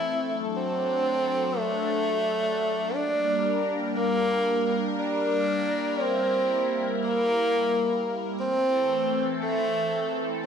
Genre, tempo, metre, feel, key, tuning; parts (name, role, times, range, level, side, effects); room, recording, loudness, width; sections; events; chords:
synthwave; 88 BPM; 4/4; straight; G dorian; A4 = 440 Hz
warm tenor saxophone; melody; 0.0-10.3 s; A3 to E4; -25 LUFS; equal; ping-pong delay
phased analog pad; sustained chords; 0.0-10.5 s; E3 to Bb4; -28 LUFS; left 1 dB; phaser, chorus
wet recital hall reverb, RT60 1.5 s; big arena sound; -23 LUFS; side -7 dB against mid
0.0-10.5 A section
0.2 D; 2.9 Gm; 8.4 Am